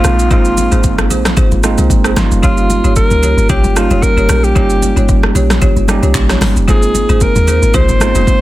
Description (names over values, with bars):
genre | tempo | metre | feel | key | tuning
amapiano | 113 BPM | 4/4 | swing 55% on 16ths | Ab major | A4 = 440 Hz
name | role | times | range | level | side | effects
breathy alto saxophone | melody | 0.0-8.4 s | F4 to C5 | -16 LUFS | equal | tape echo
bell-like tine electric piano | accompaniment | 0.0-8.4 s | F3 to G4 | -17 LUFS | right 4 dB | none
folk marimba with medium hard mallets | stabs | 0.0-8.3 s | F4 to Db5 | -21 LUFS | left 1 dB | tape echo
deep log drum bass | bass | 0.0-8.3 s | F1 to Eb2 | -14 LUFS | equal | none
deep house drum kit | drums | 0.0-8.4 s | handclaps, hi-hat, kick drum, rim click, shaker, snare drum | -14 LUFS | equal | overdrive
congas | percussion | 0.0-8.3 s | none | -22 LUFS | left 2 dB | none
downlifter | sound effects | 0.0-2.4 s | none | -32 LUFS | left 1 dB | none
room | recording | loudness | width
little or no reverb | dense, heavily limited modern master | -9 LUFS | side -16 dB against mid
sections
0.0-8.4 A section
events
none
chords
0.0 Ab6; 2.2 Eb9; 6.7 Ab6